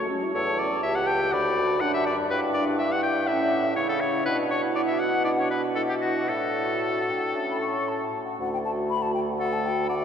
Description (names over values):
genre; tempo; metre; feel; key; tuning
quick classical-period movement for wind quintet; 113-125 BPM; 4/4; rubato; D major; A4 = 441 Hz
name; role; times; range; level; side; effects
mellow hollow silver concert flute; melody; 0.0-10.0 s; E5 to C#6; -31 LUFS; left 4 dB; none
clear oboe; second line; 0.0-10.0 s; F#4 to G5; -27 LUFS; left 2 dB; none
warm French horn; accompaniment; 0.0-10.0 s; A3 to A4; -32 LUFS; right 1 dB; none
warm clarinet; accompaniment; 0.0-10.0 s; C#4 to A4; -30 LUFS; right 2 dB; none
warm bassoon; bass; 0.3-10.0 s; C#2 to C#3; -30 LUFS; right 2 dB; none
room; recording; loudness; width
wet cathedral reverb, RT60 5.3 s; dark, warm production; -23 LUFS; side -8 dB against mid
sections
0.0-8.4 A section; 8.4-10.0 B section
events
none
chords
0.3 A7/E; 1.3 D; 2.3 Em/G; 3.3 A; 4.3 Bm; 6.3 D/A; 7.3 A; 8.4 D